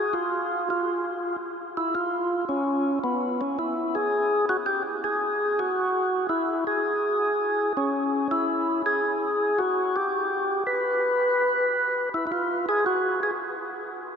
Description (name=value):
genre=jazz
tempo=110 BPM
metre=4/4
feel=swing 68% on 8ths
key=unclear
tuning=A4 = 440 Hz
part: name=percussive tonewheel organ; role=solo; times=0.0-13.3 s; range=Cb4 to Cb5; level=-23 LUFS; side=equal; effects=slow rotary speaker
room=wet huge ambient reverb, RT60 7.3 s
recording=in a vast, echoing space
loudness=-23 LUFS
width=side -7 dB against mid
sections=0.0-14.2 A section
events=none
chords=none